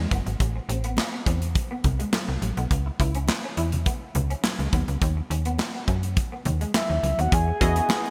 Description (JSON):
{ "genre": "early-eighties boogie funk", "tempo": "104 BPM", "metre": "4/4", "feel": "straight", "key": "unclear", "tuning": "A4 = 440 Hz", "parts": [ { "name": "electric guitar through a small old amp", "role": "riff", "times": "0.0-7.9 s", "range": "G#3 to E4", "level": "-37 LUFS", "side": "equal", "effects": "ensemble chorus" }, { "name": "slap-like FM bass", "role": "bass", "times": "0.0-7.8 s", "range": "F#1 to F#2", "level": "-28 LUFS", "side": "equal", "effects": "none" }, { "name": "modern studio drum kit", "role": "drums", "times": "0.1-8.1 s", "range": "handclaps, hi-hat, kick drum, snare drum", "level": "-28 LUFS", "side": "equal", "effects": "gated reverb" }, { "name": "congas", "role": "percussion", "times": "0.1-8.0 s", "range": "none", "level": "-36 LUFS", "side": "equal", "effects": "none" }, { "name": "soft octave-layered synth lead", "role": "melody", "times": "6.8-8.1 s", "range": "E5 to G#5", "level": "-28 LUFS", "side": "equal", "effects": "chorus, phaser" }, { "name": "funky polysynth comp", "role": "accompaniment", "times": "7.6-8.1 s", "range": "B3 to D#5", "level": "-29 LUFS", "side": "equal", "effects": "chorus" } ], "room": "light reverb, small room reverb", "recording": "bright 1980s-style digital production", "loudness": "-25 LUFS", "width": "mono", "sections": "0.0-7.3 A section", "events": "none", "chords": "0.4 Amadd9; 2.7 C#m; 4.7 B; 7.3 Emaj9" }